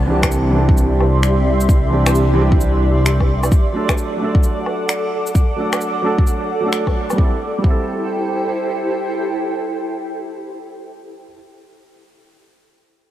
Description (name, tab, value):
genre	future garage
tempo	131 BPM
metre	4/4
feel	swing 63% on 16ths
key	A dorian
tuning	A4 = 440 Hz
part	granular cloud pad	sustained chords	0.0-10.8 s	E4 to D6	-22 LUFS	equal	built-in reverb, vintage 12-bit sampler grit, sidechain pumping
part	swelling detuned saw bass	bass	0.0-3.5 s	C2	-15 LUFS	equal	tube saturation, sidechain pumping
part	felt-muted upright piano	accompaniment	0.1-11.4 s	E3 to A4	-22 LUFS	right 2 dB	vintage 12-bit sampler grit, sidechain pumping, low-pass filter, analog delay
part	electronic finger snaps, shaker and woodblock	drums	0.2-7.2 s	none	-24 LUFS	left 1 dB	none
part	electronic kick drum	drums	0.2-7.8 s	none	-15 LUFS	equal	none
room	light reverb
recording	none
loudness	-15 LUFS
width	side -12 dB against mid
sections	0.0-7.2 A section; 7.2-10.8 B section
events	none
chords	0.0 Cadd9; 3.5 D; 7.2 Am7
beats	0.31 0.77 1.23 | 1.69 2.15 2.60 3.06 | 3.52 3.98 4.43 4.89 | 5.35 5.81 6.27 6.72 | 7.18 7.64 8.10 8.56 | 9.02 9.47 9.93 10.39